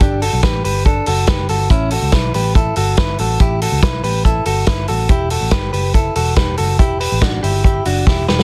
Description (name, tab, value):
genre	jangly indie pop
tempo	142 BPM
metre	4/4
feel	straight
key	unclear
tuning	A4 = 441 Hz
part	direct-recorded clean electric guitar	arpeggios	0.0-8.4 s	C#4 to B4	-21 LUFS	equal	warbly pitch drift
part	vintage muted picked electric bass	bass	0.0-8.4 s	E1 to C#2	-22 LUFS	equal	none
part	vintage drum kit	drums	0.0-8.4 s	hi-hat, kick drum, snare drum	-18 LUFS	equal	none
room	light reverb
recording	dense, heavily limited modern master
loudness	-16 LUFS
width	mono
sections	0.0-8.4 A section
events	drum fill 8.1-8.4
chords	0.0 G; 1.7 A5; 5.1 Em7